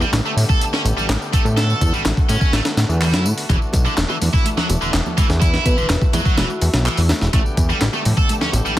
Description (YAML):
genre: breakbeat, breaks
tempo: 125 BPM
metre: 4/4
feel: straight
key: unclear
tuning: A4 = 439 Hz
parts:
  - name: overdriven tonewheel organ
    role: sustained chords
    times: 0.0-8.8 s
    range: D3 to G4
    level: -29 LUFS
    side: left 1 dB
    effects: sidechain pumping
  - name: heavy high-gain guitar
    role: riff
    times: 0.0-8.7 s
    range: D3 to A4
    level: -23 LUFS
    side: right 1 dB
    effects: distortion, vintage 12-bit sampler grit, digital delay
  - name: fat analog bass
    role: bass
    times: 0.0-8.8 s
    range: E1 to A2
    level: -18 LUFS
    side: equal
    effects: none
  - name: electronic tambourine and handclaps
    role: drums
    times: 0.0-8.8 s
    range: none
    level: -29 LUFS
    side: left 1 dB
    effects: none
  - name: breakbeat sampler-style drum kit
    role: drums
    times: 0.1-8.6 s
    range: hi-hat, kick drum, snare drum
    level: -19 LUFS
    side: equal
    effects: none
  - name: bongos and congas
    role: percussion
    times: 3.7-8.6 s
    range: none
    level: -28 LUFS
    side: right 2 dB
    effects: none
  - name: marimba with medium hard mallets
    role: melody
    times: 5.7-6.6 s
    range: F#4 to B4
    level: -29 LUFS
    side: left 1 dB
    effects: old record sound, digital delay
room: little or no reverb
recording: dense, heavily limited modern master, vinyl crackle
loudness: -15 LUFS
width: side -14 dB against mid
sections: 0.0-8.8 A section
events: none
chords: 0.0 A9sus4; 3.5 E9sus4; 7.3 A9sus4